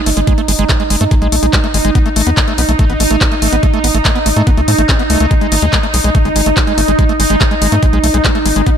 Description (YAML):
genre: psychedelic trance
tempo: 143 BPM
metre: 4/4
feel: straight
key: G# phrygian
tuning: A4 = 437 Hz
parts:
  - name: bubbling stepped-filter texture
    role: sustained chords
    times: 0.0-8.8 s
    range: D#4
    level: -16 LUFS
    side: right 1 dB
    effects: chorus, built-in reverb, sidechain pumping
  - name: overdriven acid bass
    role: riff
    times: 0.1-8.7 s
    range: G#3 to C#4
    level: -19 LUFS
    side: moving between left 8 dB and right 8 dB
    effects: auto-pan, sidechain pumping, tape echo
  - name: tight sequencer bass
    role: bass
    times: 0.1-8.6 s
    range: G#1 to A2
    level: -15 LUFS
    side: equal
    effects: none
  - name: drum and bass drum kit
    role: drums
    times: 0.1-8.7 s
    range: handclaps, hi-hat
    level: -17 LUFS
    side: left 1 dB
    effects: none
  - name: electronic kick drum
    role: drums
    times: 0.3-8.7 s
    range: none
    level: -13 LUFS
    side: equal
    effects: none
room: light reverb, digital ambience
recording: none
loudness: -10 LUFS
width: side -8 dB against mid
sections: 0.0-8.8 A section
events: none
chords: 0.0 G#5; 2.0 A5; 5.3 G#5